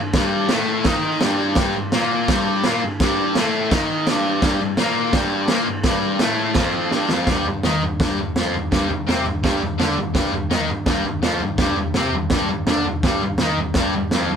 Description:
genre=garage rock duo or trio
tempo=168 BPM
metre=4/4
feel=straight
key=G minor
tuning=A4 = 440 Hz
part: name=fuzz guitar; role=riff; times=0.0-14.4 s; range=F2 to Eb4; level=-20 LUFS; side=left 1 dB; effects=distortion
part: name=raw garage drum kit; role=drums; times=0.1-14.4 s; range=crash cymbal, kick drum, snare drum, toms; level=-21 LUFS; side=right 1 dB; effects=none
room=light reverb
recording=band playing live in one room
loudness=-17 LUFS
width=side -7 dB against mid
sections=0.0-7.3 A section; 7.3-14.4 B section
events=drum fill 6.9-7.3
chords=0.0 Gm; 7.3 G5

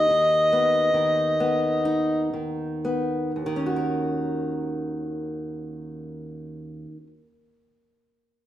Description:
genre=folk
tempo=55-73 BPM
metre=4/4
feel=straight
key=Eb minor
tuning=A4 = 439 Hz
part: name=overdriven harmonica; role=melody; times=0.0-2.3 s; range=Eb5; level=-20 LUFS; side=left 1 dB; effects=none
part: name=fingerpicked steel-string acoustic guitar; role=accompaniment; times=0.0-7.3 s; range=D#2 to Bb4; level=-26 LUFS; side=equal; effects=none
room=wet large studio reverb, RT60 1.2 s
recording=band playing live in one room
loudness=-22 LUFS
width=side -12 dB against mid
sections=0.0-3.4 A section; 3.4-7.7 B section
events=slowing down 0.0-3.4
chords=0.0 B/D#; 3.4 Ebm7

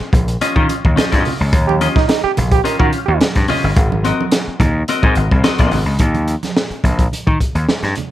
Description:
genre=funk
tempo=107 BPM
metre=4/4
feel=straight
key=Eb mixolydian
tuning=A4 = 440 Hz
part: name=gritty slap bass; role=bass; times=0.0-7.9 s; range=G1 to Eb3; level=-16 LUFS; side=equal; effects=overdrive
part: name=crunchy breakbeat drum kit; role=drums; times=0.1-8.1 s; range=hi-hat, kick drum, snare drum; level=-16 LUFS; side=equal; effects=none
part: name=congas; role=percussion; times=0.1-8.1 s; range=none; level=-26 LUFS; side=right 6 dB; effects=none
part: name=clean electric guitar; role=accompaniment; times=0.4-5.8 s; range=C4 to F5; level=-20 LUFS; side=left 4 dB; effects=spring reverb
part: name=clear trombone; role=second line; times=1.7-3.2 s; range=Eb4 to Bb4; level=-18 LUFS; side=right 9 dB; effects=none
room=small room ambience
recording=none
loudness=-13 LUFS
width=side -13 dB against mid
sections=0.0-6.0 A section; 6.0-8.1 B section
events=none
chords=0.0 Eb9; 3.8 Ab9; 6.0 Eb5

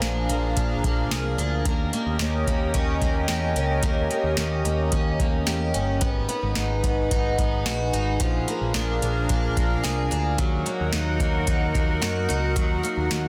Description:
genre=dream pop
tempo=110 BPM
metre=4/4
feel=straight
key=unclear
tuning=A4 = 437 Hz
part: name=phased analog pad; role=sustained chords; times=0.0-13.3 s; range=C#4 to F#5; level=-31 LUFS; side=equal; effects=phaser, chorus, shimmer reverb
part: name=picked twelve-string acoustic guitar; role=arpeggios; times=0.0-13.3 s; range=E#3 to G#4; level=-31 LUFS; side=equal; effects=lush chorus, digital delay, shimmer reverb
part: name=picked electric bass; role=bass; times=0.0-13.3 s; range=G1 to F#2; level=-29 LUFS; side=equal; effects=none
part: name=booming analog drum machine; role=drums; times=0.0-13.2 s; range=hi-hat, kick drum, snare drum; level=-28 LUFS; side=equal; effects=overdrive
room=moderate plate reverb, RT60 2.3 s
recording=dense, heavily limited modern master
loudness=-24 LUFS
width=mono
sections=0.0-13.3 A section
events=none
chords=0.0 A#7; 1.7 D#7; 6.0 G#m7; 8.2 A#7; 10.4 D#m

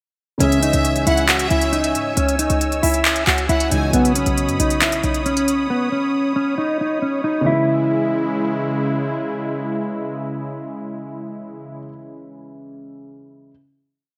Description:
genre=hip hop, trap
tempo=136 BPM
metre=4/4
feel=half-time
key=C# minor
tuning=A4 = 439 Hz
part: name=mellow electric guitar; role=melody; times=0.4-8.7 s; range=B3 to F#4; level=-22 LUFS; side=equal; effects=analog chorus, low-pass filter
part: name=bright studio violin section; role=second line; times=0.4-3.9 s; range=E5 to G#5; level=-29 LUFS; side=equal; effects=delay
part: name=dark concert grand piano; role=accompaniment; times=0.4-13.5 s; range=C#3 to G#4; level=-29 LUFS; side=equal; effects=subtle chorus, low-pass filter
part: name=warm analog pad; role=sustained chords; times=0.4-11.8 s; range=C#3 to E6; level=-28 LUFS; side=equal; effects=chorus
part: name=short 808-style bass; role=bass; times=0.4-5.7 s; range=B1 to G#2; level=-25 LUFS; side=equal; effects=none
part: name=trap drum kit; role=drums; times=0.4-5.6 s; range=handclaps, hi-hat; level=-23 LUFS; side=equal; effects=gated reverb
room=moderate plate reverb, RT60 2.4 s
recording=bright 1980s-style digital production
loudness=-19 LUFS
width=mono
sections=0.4-7.5 hook; 7.5-11.0 final chord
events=none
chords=0.4 C#m; 3.9 Badd9; 7.5 C#m

